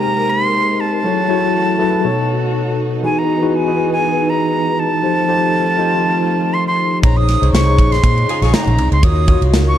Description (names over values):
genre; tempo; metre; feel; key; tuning
polished 1980s jazz-funk pop; 120 BPM; 4/4; swing 54% on 16ths; unclear; A4 = 440 Hz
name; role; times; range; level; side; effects
breathy bright concert flute; melody; 0.0-9.8 s; G#5 to Eb6; -18 LUFS; right 1 dB; none
tine electric piano; accompaniment; 0.0-9.8 s; B2 to Eb5; -17 LUFS; left 3 dB; fast stereo tremolo, lush chorus
warm studio string section; sustained chords; 0.0-9.8 s; C3 to Bb4; -25 LUFS; right 3 dB; none
vintage muted fingered electric bass; bass; 7.0-9.7 s; Bb1 to Bb2; -14 LUFS; equal; none
modern studio drum kit; drums; 7.0-9.7 s; kick drum, ride cymbal, snare drum; -16 LUFS; equal; none
warm horn section; second line; 8.3-8.8 s; Eb4 to Ab4; -26 LUFS; equal; none
room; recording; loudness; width
light reverb; dark, warm production; -13 LUFS; side -11 dB against mid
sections
0.0-9.8 A section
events
none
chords
0.0 Abmaj9; 1.0 Gbm7; 2.0 B7; 3.0 Emaj7; 5.0 F7; 7.0 Bbm11; 9.0 Ebm7